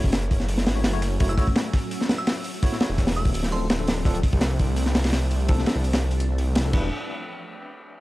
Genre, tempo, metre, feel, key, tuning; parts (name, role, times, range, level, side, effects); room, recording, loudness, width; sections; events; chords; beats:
drum and bass, jungle; 168 BPM; 4/4; straight; A4 = 439 Hz
soft string machine; sustained chords; 0.0-6.9 s; F3 to F#4; -34 LUFS; equal; phaser, ensemble chorus, vintage 12-bit sampler grit
bell-like tine electric piano; stabs; 0.0-6.9 s; F3 to C#5; -34 LUFS; left 2 dB; medium stereo tremolo, dub echo
detuned saw bass; bass; 0.0-6.9 s; D1 to C2; -24 LUFS; equal
crunchy breakbeat drum kit; drums; 0.0-6.8 s; crash cymbal, hi-hat, kick drum, snare drum; -23 LUFS; equal
dusty soul sampler-style drum kit; drums; 0.1-6.7 s; hi-hat, snare drum; -39 LUFS; left 1 dB
glassy synth bell; melody; 1.3-3.8 s; C6 to E6; -36 LUFS; right 2 dB; chorus, tremolo, dub echo
studio reverb; dry, gritty hardware recording; -21 LUFS; side -18 dB against mid
0.0-6.9 A section; 6.9-8.0 B section
drop 0.0-6.9
0.0 F#m7; 3.3 Dm7; 6.7 Em7; 6.9 N.C.
0.13 0.49 0.84 | 1.20 1.56 1.92 2.27 | 2.63 2.99 3.34 3.70 | 4.06 4.42 4.77 5.13 | 5.49 5.84 6.20 6.56